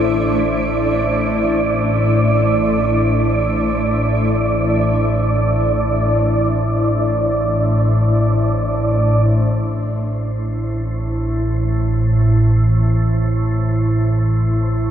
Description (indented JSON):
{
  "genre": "dark ambient drone",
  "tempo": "free time",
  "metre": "none",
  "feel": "none",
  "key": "A minor",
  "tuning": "A4 = 440 Hz",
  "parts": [
    { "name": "granular cloud pad", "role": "sustained chords", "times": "0.0-9.3 s", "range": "A3 to C5", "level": "-22 LUFS", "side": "left 2 dB", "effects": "built-in reverb" },
    { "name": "organ-like drone", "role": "drone", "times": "0.0-14.9 s", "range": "A1 to A2", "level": "-16 LUFS", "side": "equal", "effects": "ensemble chorus, built-in reverb" },
    { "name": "wind-like tuned noise texture", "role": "texture", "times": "0.0-14.9 s", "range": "C5 to D5", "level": "-22 LUFS", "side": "right 4 dB", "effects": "built-in reverb" }
  ],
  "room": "wet cathedral reverb, RT60 5.5 s",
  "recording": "none",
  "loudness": "-14 LUFS",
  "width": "side -10 dB against mid",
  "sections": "0.0-9.3 A section; 9.3-14.9 B section",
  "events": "none",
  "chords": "0.0 C/A; 9.3 Am"
}